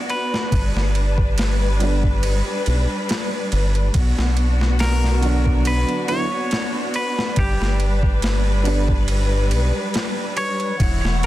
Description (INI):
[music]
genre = trip hop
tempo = 70 BPM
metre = 4/4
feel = swing 54% on 16ths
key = unclear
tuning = A4 = 440 Hz
[part]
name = rich studio string section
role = sustained chords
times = 0.0-11.3 s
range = E3 to F#5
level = -25 LUFS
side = left 1 dB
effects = none
[part]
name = clean electric guitar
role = melody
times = 0.1-11.3 s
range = G4 to C#5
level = -26 LUFS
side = equal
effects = tape echo
[part]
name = boom bap sampler-style drum kit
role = drums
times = 0.1-11.3 s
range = hi-hat, kick drum, ride cymbal, snare drum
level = -23 LUFS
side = equal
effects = overdrive
[part]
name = round analog bass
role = bass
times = 0.5-11.3 s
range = E1 to B1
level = -19 LUFS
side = equal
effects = tube saturation
[part]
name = felt-muted upright piano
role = accompaniment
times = 1.8-8.9 s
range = D3 to E4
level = -27 LUFS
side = right 2 dB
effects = harmonic tremolo, tape echo
[sound]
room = digital ambience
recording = dense, heavily limited modern master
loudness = -17 LUFS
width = side -15 dB against mid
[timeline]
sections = 0.0-10.8 A section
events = none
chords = 0.0 Bm; 0.5 G; 3.9 Bm; 7.4 G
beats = | 0.51 1.37 2.23 3.08 | 3.94 4.80 5.66 6.51 | 7.37 8.23 9.08 9.94 | 10.80